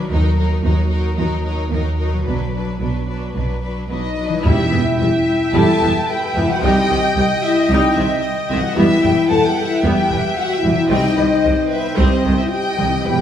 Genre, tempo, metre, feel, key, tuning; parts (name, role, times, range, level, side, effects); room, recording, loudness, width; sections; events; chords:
cinematic, heroic adventure film score; 112 BPM; 4/4; straight; E harmonic minor from 4.5 s; A4 = 440 Hz
warm symphonic violin section; melody; 0.0-13.2 s; Bb4 to A5; -25 LUFS; left 3 dB
rich studio violin section; second line; 0.0-13.2 s; D4 to G5; -27 LUFS; left 1 dB
rich symphonic viola section; accompaniment; 0.0-12.9 s; C3 to E4; -23 LUFS; right 1 dB
concert harp; arpeggios; 0.0-13.2 s; B2 to C5; -28 LUFS; left 6 dB
rich symphonic cello section; bass; 0.1-13.2 s; C2 to Eb3; -23 LUFS; right 2 dB
rich symphonic double bass section; bass; 0.1-13.2 s; E1 to Eb2; -22 LUFS; right 1 dB
timpani; percussion; 0.1-0.9, 4.5-5.2 s; E2 to Eb3; -23 LUFS; left 1 dB
mellow hollow silver concert flute; second line; 3.9-13.2 s; B4 to A5; -28 LUFS; equal
mellow French horn section; sustained chords; 3.9-13.2 s; B3 to A4; -19 LUFS; left 2 dB
dark cor anglais; second line; 4.5-13.2 s; G5; -28 LUFS; right 3 dB
mellow clarinet; second line; 4.5-13.2 s; B4 to E5; -28 LUFS; equal
wet scoring stage reverb, RT60 2.0 s; -15 LUFS; side -9 dB against mid
0.0-4.5 A section; 4.5-13.2 B section
0.1 Ebm; 2.3 Bm; 4.5 Em; 6.6 Cm; 8.8 Em; 10.9 Cm